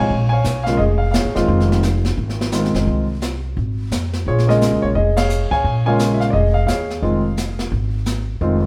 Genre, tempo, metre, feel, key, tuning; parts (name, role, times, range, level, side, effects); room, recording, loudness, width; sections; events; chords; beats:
jazz piano trio; 173 BPM; 4/4; swing 62% on 8ths; F minor; A4 = 440 Hz
warm concert grand piano; melody; 0.0-8.6 s; C3 to Ab5; -21 LUFS; equal
upright bass; bass; 0.0-8.7 s; F1 to F2; -22 LUFS; equal
jazz brush drum kit; drums; 0.1-8.7 s; brushed snare drum, hi-hat, kick drum, ride cymbal, snare drum; -28 LUFS; equal
moderate stone room reverb, RT60 1.2 s; band playing live in one room; -18 LUFS; mono
0.0-8.7 A section
band accent 5.1
0.1 Bbm7; 1.5 Fm7; 4.3 Bbm7; 7.0 Fm7
| 0.10 0.45 0.79 1.14 | 1.49 1.83 2.18 2.52 | 2.87 3.22 3.56 3.91 | 4.26 4.60 4.95 5.30 | 5.64 5.99 6.34 6.68 | 7.03 7.37 7.72 8.06 | 8.41